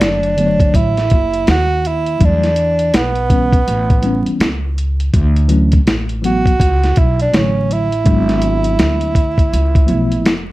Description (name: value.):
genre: hip hop, jazz-hop.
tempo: 82 BPM.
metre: 4/4.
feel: swing 62% on 16ths.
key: unclear.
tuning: A4 = 440 Hz.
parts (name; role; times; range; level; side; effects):
breathy tenor saxophone; melody; 0.0-10.4 s; B3 to F#4; -17 LUFS; right 2 dB; none.
tine electric piano; accompaniment; 0.0-10.3 s; D3 to C#5; -18 LUFS; left 1 dB; medium stereo tremolo.
upright bass; bass; 0.0-10.5 s; E#1 to E2; -17 LUFS; equal; none.
lo-fi sampler-style drum kit; drums; 0.0-10.5 s; hi-hat, kick drum, snare drum; -15 LUFS; equal; none.
room: light reverb.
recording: dark, warm production, vinyl crackle.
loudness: -12 LUFS.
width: side -18 dB against mid.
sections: 0.0-10.5 A section.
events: none.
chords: 0.0 Bm9 (rootless); 2.2 Em11; 3.7 A7; 5.1 Dmaj9; 8.1 G#m7b5; 9.5 C#7alt.